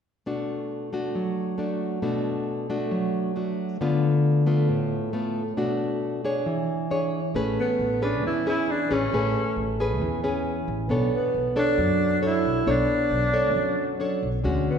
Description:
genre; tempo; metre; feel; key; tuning
bossa nova; 135 BPM; 4/4; straight; unclear; A4 = 440 Hz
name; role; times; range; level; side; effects
nylon-string guitar; accompaniment; 0.3-14.8 s; A2 to C#5; -24 LUFS; equal; none
upright bass; bass; 7.3-14.7 s; A1 to F#2; -29 LUFS; equal; none
breathy tenor saxophone; melody; 7.6-14.8 s; B3 to E4; -25 LUFS; equal; none
room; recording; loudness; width
wet scoring stage reverb, RT60 1.7 s; recorded in a church or concert hall; -22 LUFS; side -7 dB against mid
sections
0.3-7.4 A section; 7.4-14.8 B section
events
none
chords
0.3 Bm7; 3.8 Dm6; 5.6 Bm7; 6.5 E6; 7.4 Amaj9; 10.9 Bm9

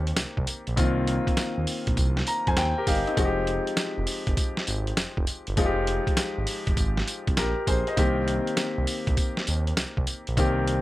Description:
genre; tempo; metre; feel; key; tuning
R&B, new jack swing; 100 BPM; 4/4; swing 67% on 16ths; F minor; A4 = 441 Hz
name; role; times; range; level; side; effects
clear baby grand piano; accompaniment; 0.0-10.8 s; Eb3 to Bb5; -28 LUFS; left 2 dB; none
smooth gliding synth bass; bass; 0.0-10.8 s; F1 to F2; -28 LUFS; right 1 dB; none
boom bap sampler-style drum kit; drums; 0.1-10.8 s; hi-hat, kick drum, snare drum, tambourine; -26 LUFS; right 1 dB; none
room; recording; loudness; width
little or no reverb; none; -23 LUFS; side -16 dB against mid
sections
0.0-10.8 A section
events
grand piano fill 2.0-3.2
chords
0.0 Cm7; 3.2 Fm9; 8.0 Cm7

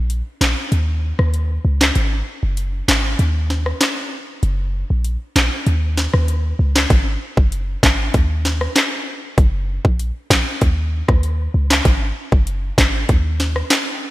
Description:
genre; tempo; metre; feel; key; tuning
dancehall; 97 BPM; 4/4; straight; unclear; A4 = 439 Hz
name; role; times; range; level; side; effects
warm 808-style bass; bass; 0.0-13.6 s; Gb1 to Eb2; -18 LUFS; equal; none
island pop drum kit; drums; 0.1-13.9 s; handclaps, hi-hat, kick drum, rim click, snare drum; -17 LUFS; equal; gated reverb
room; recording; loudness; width
light reverb, digital ambience; bright 1980s-style digital production; -16 LUFS; side -17 dB against mid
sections
0.0-14.1 A section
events
break 0.0-6.9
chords
none

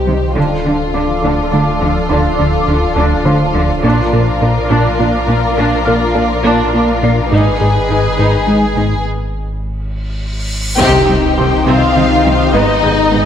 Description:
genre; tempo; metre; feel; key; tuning
cinematic, hybrid orchestral and electronic film score; 69 BPM (dotted quarters); 6/8; straight; unclear; A4 = 440 Hz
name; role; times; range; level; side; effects
warm symphonic violin section; melody; 0.0-13.3 s; A4 to G5; -21 LUFS; left 4 dB; low-pass filter
warm studio violin section; second line; 0.0-13.3 s; Eb4 to Ab4; -18 LUFS; left 3 dB; none
analog string pad; sustained chords; 0.0-13.3 s; Eb3 to D5; -20 LUFS; left 1 dB; ensemble chorus, phaser, low-pass filter
sub bass with octave; bass; 0.0-13.3 s; D1 to C2; -21 LUFS; equal; none
felt-muted upright piano; texture; 0.0-13.3 s; Ab4 to C7; -27 LUFS; left 1 dB; none
rich symphonic viola section; accompaniment; 0.1-13.3 s; Cb4 to Eb4; -19 LUFS; right 2 dB; low-pass filter
resonant blip pluck; arpeggios; 0.1-13.3 s; C3 to Bb4; -23 LUFS; right 1 dB; none
smooth synth bass; riff; 0.1-13.3 s; C2 to Bb3; -18 LUFS; left 1 dB; low-pass filter
rich symphonic cello section; bass; 0.1-13.2 s; Ab2 to D3; -20 LUFS; right 3 dB; none
cymbal swell and impact; sound effects; 10.1-12.5 s; none; -24 LUFS; equal; none
mellow French horn section; sustained chords; 10.8-13.3 s; Cb4 to Eb4; -19 LUFS; left 6 dB; low-pass filter
clear symphonic double bass section; bass; 10.8-13.2 s; Ab1 to C2; -22 LUFS; right 3 dB; none
room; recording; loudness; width
wet scoring stage reverb, RT60 1.8 s; none; -11 LUFS; side -9 dB against mid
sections
0.0-10.8 A section; 10.8-13.3 B section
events
build-up 0.0-10.8; filter sweep 0.0-10.8; break 9.1-10.8; cymbal swell 10.1-10.8; band accent 10.8-11.4; impact 10.8-12.5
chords
0.4 Dm; 3.8 Bb; 7.3 Abm; 10.8 Cm; 12.5 Abm

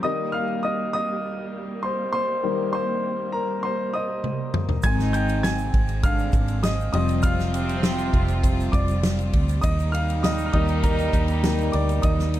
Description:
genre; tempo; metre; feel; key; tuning
piano-driven pop; 100 BPM; 4/4; straight; Eb major; A4 = 440 Hz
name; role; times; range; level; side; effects
warm concert grand piano; accompaniment; 0.0-12.4 s; Eb3 to Ab6; -26 LUFS; left 2 dB; plate reverb
rich studio string section; sustained chords; 0.0-12.4 s; G3 to F4; -32 LUFS; right 1 dB; plate reverb
natural country drum kit; drums; 4.2-12.4 s; kick drum, ride cymbal, snare drum, toms; -24 LUFS; equal; none
muted French horn section; second line; 4.8-12.4 s; C3 to Eb4; -30 LUFS; right 4 dB; plate reverb
vintage muted fingered electric bass; bass; 4.8-12.4 s; F1 to Eb2; -24 LUFS; equal; none
egg shaker; percussion; 4.8-12.4 s; none; -47 LUFS; right 9 dB; none
room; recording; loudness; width
light reverb; dark, warm production; -21 LUFS; side -13 dB against mid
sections
0.0-12.4 A section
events
grand piano solo 0.0-12.4; drum fill 4.2-4.8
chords
0.0 Eb; 4.8 Ab; 6.9 Fsus2; 9.6 Eb

